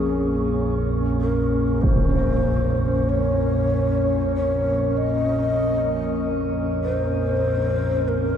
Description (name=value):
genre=dark ambient drone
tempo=48 BPM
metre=4/4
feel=straight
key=unclear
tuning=A4 = 440 Hz
part: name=breathy mellow long shakuhachi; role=melody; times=0.0-8.4 s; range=Ab4 to Eb5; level=-25 LUFS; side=left 1 dB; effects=shimmer reverb, tape echo
part: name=dark analog pad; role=sustained chords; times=0.0-8.4 s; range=Bb3 to Bb4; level=-26 LUFS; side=equal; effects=wide subtle chorus, shimmer reverb
part: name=dark detuned synth bell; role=arpeggios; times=0.0-8.4 s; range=Eb4 to Bb4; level=-53 LUFS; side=equal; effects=none
part: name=analog drone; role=drone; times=0.0-8.4 s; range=Bb1 to F2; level=-24 LUFS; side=equal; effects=chorus
part: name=wind-like tuned noise texture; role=texture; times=0.0-8.4 s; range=Db4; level=-31 LUFS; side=right 1 dB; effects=built-in reverb, shimmer reverb
part: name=impact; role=percussion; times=1.8-2.1 s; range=none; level=-26 LUFS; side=equal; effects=low-pass filter on sfx
room=wet cathedral reverb, RT60 5.5 s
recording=dark, warm production, nothing above 10.6 kHz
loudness=-19 LUFS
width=side -8 dB against mid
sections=0.0-8.4 A section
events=none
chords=0.0 Bbmadd9